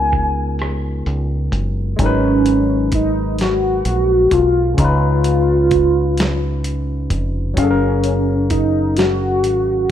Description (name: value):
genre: slow six-eight R&B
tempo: 43 BPM (dotted quarters)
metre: 6/8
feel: straight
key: G# dorian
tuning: A4 = 445 Hz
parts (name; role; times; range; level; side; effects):
- warm velvety synth lead; melody; 0.0-9.9 s; C#4 to G#5; -17 LUFS; equal; chorus, slapback echo
- overdriven tine electric piano; accompaniment; 0.0-9.9 s; C#3 to E#5; -22 LUFS; left 2 dB; phaser
- deep dub fingered electric bass; bass; 0.0-9.9 s; E#1 to C#2; -20 LUFS; equal; none
- dusty soul sampler-style drum kit; drums; 0.1-9.7 s; hi-hat, kick drum, rim click, snare drum; -22 LUFS; equal; overdrive
room: light reverb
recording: rough home demo mix, low-pass filter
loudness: -14 LUFS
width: side -10 dB against mid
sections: 0.0-2.0 A section; 2.0-9.9 B section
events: filter sweep 0.0-2.0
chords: 0.0 C#13; 2.0 G#m9; 4.8 C#9; 7.6 F#maj9